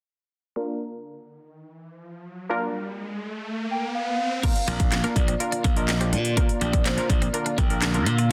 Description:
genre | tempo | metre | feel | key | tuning
dance-pop | 124 BPM | 4/4 | straight | Bb major | A4 = 442 Hz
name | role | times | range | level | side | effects
wavetable chord stab | accompaniment | 0.6-8.2 s | Bb3 to Bb4 | -33 LUFS | equal | sidechain pumping, low-pass filter
riser | sound effects | 1.6-4.4 s | none | -35 LUFS | equal | none
hollow clarinet-like synth lead | melody | 3.7-8.3 s | C5 to G5 | -33 LUFS | equal | chorus, phaser
chorused pulse-width pad | sustained chords | 4.4-8.3 s | D3 to F4 | -37 LUFS | equal | none
twelve-string electric guitar | riff | 4.4-8.3 s | Bb3 to F4 | -36 LUFS | equal | subtle chorus
house drum kit | drums | 4.4-8.3 s | crash cymbal, handclaps, hi-hat, kick drum, snare drum | -26 LUFS | equal | none
glassy slap bass | bass | 4.7-8.3 s | Bb1 to Bb2 | -27 LUFS | equal | sidechain pumping
room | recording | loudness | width
light reverb, digital ambience | dense, heavily limited modern master | -25 LUFS | mono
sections
0.6-4.4 A section; 4.4-8.3 B section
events
riser 1.6-4.4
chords
0.6 Bb

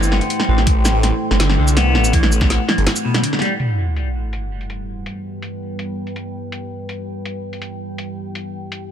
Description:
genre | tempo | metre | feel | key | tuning
half-time drum and bass | 164 BPM | 4/4 | half-time | E minor | A4 = 436 Hz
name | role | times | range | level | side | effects
deep dark ambient pad | sustained chords | 0.0-8.9 s | G3 to C6 | -25 LUFS | equal | chorus, built-in reverb, sidechain pumping
semi-hollow electric guitar | arpeggios | 0.0-3.5 s | B2 to B3 | -22 LUFS | left 2 dB | vintage 12-bit sampler grit, ping-pong delay
phased detuned saw bass | bass | 0.0-2.9 s | G1 to C2 | -16 LUFS | equal | phaser
drum and bass drum kit | drums | 0.0-8.8 s | hi-hat, shaker, snare drum | -21 LUFS | right 1 dB | low-pass filter on snare, low-pass filter on hats, low-pass filter on perc, low-pass filter on room
electronic kick drum | drums | 0.7-2.5 s | none | -17 LUFS | equal | none
sub drop | sound effects | 3.6-5.1 s | none | -22 LUFS | equal | none
room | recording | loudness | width
light reverb | none | -16 LUFS | side -9 dB against mid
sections
0.0-3.6 A section; 3.6-8.9 B section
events
drop 0.0-3.6; break 2.9-3.6; impact 3.6-5.1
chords
0.0 Am7; 3.6 Em

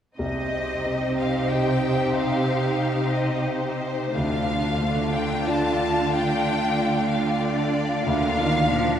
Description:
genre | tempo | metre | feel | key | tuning
cinematic, emotional film score for orchestra | 92 BPM | 3/4 | rubato | C dorian | A4 = 440 Hz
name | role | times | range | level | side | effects
rich symphonic violin section | melody | 0.2-9.0 s | C5 to A5 | -27 LUFS | left 2 dB | none
rich symphonic violin section | second line | 0.2-9.0 s | D4 to F5 | -30 LUFS | left 1 dB | none
warm baby grand piano | accompaniment | 0.2-9.0 s | C2 to Eb5 | -28 LUFS | left 1 dB | none
warm symphonic viola section | accompaniment | 0.2-9.0 s | A3 to Eb4 | -28 LUFS | right 1 dB | none
rich symphonic cello section | bass | 0.2-9.0 s | C3 to F3 | -27 LUFS | right 2 dB | none
room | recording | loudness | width
wet cathedral reverb, RT60 5.6 s | recorded in a church or concert hall | -21 LUFS | side -9 dB against mid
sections
0.2-9.0 A section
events
none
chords
0.2 Cm; 4.2 Dm; 8.1 Bb/D

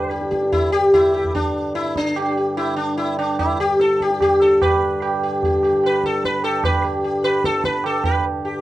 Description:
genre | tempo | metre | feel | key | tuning
indian classical, Hindustani | 148 BPM | 3/4 | straight | G raga bhupali | A4 = 440 Hz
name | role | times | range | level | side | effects
sitar | melody | 0.0-8.6 s | D4 to B4 | -18 LUFS | left 1 dB | none
pedal harmonium | drone | 0.0-8.6 s | G2 to D3 | -28 LUFS | left 1 dB | none
tabla | percussion | 0.1-8.2 s | none | -24 LUFS | right 4 dB | none
room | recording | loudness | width
light reverb | dry, close 1970s-style studio recording | -16 LUFS | side -15 dB against mid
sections
0.0-8.6 A section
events
speeding up 0.0-8.6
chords
none

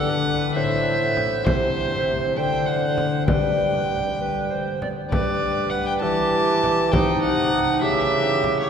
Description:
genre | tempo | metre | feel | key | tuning
classical, renaissance-style consort dance | 66 BPM (dotted quarters) | 6/8 | straight | G major | A4 = 440 Hz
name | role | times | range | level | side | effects
warm violin | melody | 0.0-8.7 s | C5 to A5 | -25 LUFS | left 1 dB | none
tenor recorder | second line | 0.0-8.7 s | Eb4 to D5 | -26 LUFS | right 4 dB | none
concert harp | accompaniment | 0.0-8.7 s | A2 to D5 | -26 LUFS | left 5 dB | none
mellow bassoon | bass | 0.0-8.7 s | A2 to G3 | -26 LUFS | right 2 dB | none
frame drum | percussion | 1.2-8.7 s | none | -28 LUFS | equal | none
room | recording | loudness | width
wet cathedral reverb, RT60 6.7 s | heard from further back in the room | -19 LUFS | side -7 dB against mid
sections
0.0-5.1 A section; 5.1-8.7 A section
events
none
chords
0.0 D; 0.6 Am; 1.5 C; 2.4 D7; 3.3 G; 6.0 Em; 6.9 Cm; 7.8 A7/C#

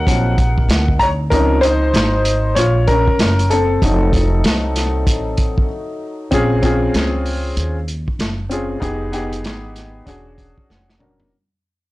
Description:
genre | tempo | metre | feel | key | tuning
hip hop, jazz-hop | 96 BPM | 4/4 | swing 62% on 16ths | unclear | A4 = 442 Hz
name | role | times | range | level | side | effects
warm upright piano | accompaniment | 0.0-11.3 s | C3 to Bb5 | -18 LUFS | left 1 dB | none
upright bass | bass | 0.0-11.3 s | E1 to Eb2 | -19 LUFS | equal | transformer saturation
vintage drum kit | drums | 0.1-11.3 s | hi-hat, kick drum, snare drum, toms | -19 LUFS | equal | none
room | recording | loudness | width
light reverb | blown-out, overdriven recording, overdrive | -14 LUFS | side -18 dB against mid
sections
0.0-6.3 A section; 6.3-11.3 B section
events
upright piano solo 0.0-6.3; break 5.7-6.3; fade-out 6.3-11.3; drum fill 10.7-11.3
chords
0.0 Ab13 (rootless); 1.3 Dbmaj7; 3.8 F7b9; 6.3 Bbm7; 8.8 Fm7b5; 10.1 E13

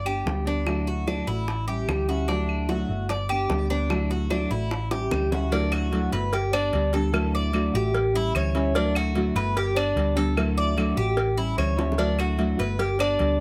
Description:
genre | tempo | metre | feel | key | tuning
latin, Cuban son and guajira | 148 BPM | 4/4 | straight | D major | A4 = 437 Hz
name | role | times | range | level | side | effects
Cuban tres | arpeggios | 0.0-13.4 s | D4 to D5 | -30 LUFS | equal | none
hollow-body short-scale picked electric bass | bass | 0.0-13.4 s | G1 to D2 | -29 LUFS | equal | none
nylon-string guitar | accompaniment | 0.1-13.4 s | D3 to G4 | -30 LUFS | equal | none
claves | percussion | 0.1-13.2 s | none | -38 LUFS | equal | none
bongos and cowbell | percussion | 0.3-13.4 s | none | -35 LUFS | equal | none
room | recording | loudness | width
light reverb | close, detailed microphones | -25 LUFS | mono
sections
0.0-5.5 A section; 5.5-13.4 B section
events
drum fill 4.9-5.5, 11.8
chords
0.0 G; 0.7 Dadd9; 1.5 A7; 2.3 Dadd9; 3.1 G; 3.9 Dadd9; 4.7 A7; 5.5 Dadd9; 6.3 G; 7.1 Dadd9; 7.9 A7; 8.7 Dadd9; 9.6 G; 10.4 Dadd9; 11.2 A7; 12.0 Dadd9; 12.8 G

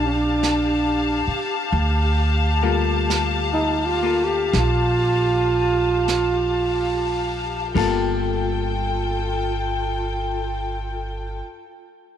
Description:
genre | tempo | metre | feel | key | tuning
jazz ballad | 35-47 BPM | 4/4 | swing 66% on 8ths | G minor | A4 = 445 Hz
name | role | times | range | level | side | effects
breathy tenor saxophone | melody | 0.0-7.5 s | D4 to G4 | -22 LUFS | right 3 dB | none
vintage hollow-body jazz guitar | accompaniment | 0.0-11.5 s | G3 to A4 | -26 LUFS | left 10 dB | none
warm studio string section | sustained chords | 0.0-11.4 s | F4 to A5 | -25 LUFS | left 3 dB | none
upright bass | bass | 0.0-11.4 s | G1 to D2 | -24 LUFS | right 1 dB | none
vintage brush drum kit | drums | 0.4-8.6 s | brushed snare drum, crash cymbal, hi-hat, kick drum, snare drum | -33 LUFS | right 8 dB | none
room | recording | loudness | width
light reverb, small room reverb | 1960s-style stereo with parts hard left and right | -19 LUFS | side -9 dB against mid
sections
0.0-7.8 A section; 7.8-12.2 B section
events
slowing down 0.0-7.8; tenor saxophone solo 0.0-7.8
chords
0.0 Gm9

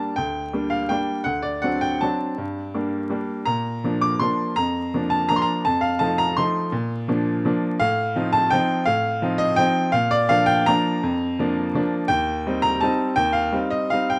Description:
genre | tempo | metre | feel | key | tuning
classical, piano waltz | 166 BPM | 3/4 | uneven beats, rubato | Bb major from 7.8 s | A4 = 440 Hz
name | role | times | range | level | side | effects
bright upright piano | solo | 0.0-14.2 s | D2 to D6 | -22 LUFS | equal | none
room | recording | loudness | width
light reverb | close, detailed microphones, vinyl crackle | -22 LUFS | mono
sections
0.0-14.2 A section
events
none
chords
0.0 Gm; 1.3 D7; 2.4 Gm; 3.5 Bb; 5.7 F7; 6.7 Bb; 7.8 F7/A; 9.9 Bb; 12.1 Cm/Eb

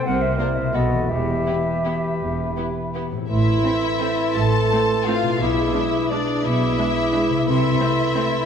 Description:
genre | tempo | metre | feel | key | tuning
classical, orchestral ballroom waltz | 155-193 BPM | 3/4 | rubato | E minor, A minor from 3.3 s | A4 = 439 Hz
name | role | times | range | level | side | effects
dark cor anglais | second line | 0.0-8.5 s | D4 to C5 | -30 LUFS | right 1 dB | none
silver concert flute | second line | 0.0-8.5 s | D5 to D6 | -29 LUFS | equal | none
warm clarinet | second line | 0.0-8.5 s | G4 to Bb4 | -32 LUFS | left 3 dB | none
mellow bassoon | accompaniment | 0.0-8.5 s | E3 to G4 | -29 LUFS | right 4 dB | none
concert harp | arpeggios | 0.0-8.5 s | A2 to E5 | -27 LUFS | left 5 dB | none
warm studio double bass section | bass | 0.1-7.8 s | E1 to C2 | -28 LUFS | right 3 dB | none
warm symphonic cello section | bass | 0.1-7.8 s | E2 to C3 | -27 LUFS | right 3 dB | none
warm symphonic violin section | melody | 0.4-8.5 s | G4 to A5 | -27 LUFS | left 6 dB | none
warm symphonic violin section | second line | 0.4-8.5 s | D4 to Bb4 | -30 LUFS | left 1 dB | none
warm symphonic viola section | accompaniment | 0.4-8.2 s | G#3 to D4 | -31 LUFS | right 1 dB | none
mellow French horn section | sustained chords | 0.4-8.5 s | B3 to Bb4 | -26 LUFS | left 1 dB | none
room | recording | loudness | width
wet concert hall reverb, RT60 2.4 s | none | -18 LUFS | side -7 dB against mid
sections
0.0-3.3 A section; 3.3-8.5 B section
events
none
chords
0.1 C7; 0.7 B7; 1.1 Em; 3.3 Am; 5.4 E7/B; 7.5 Am/C

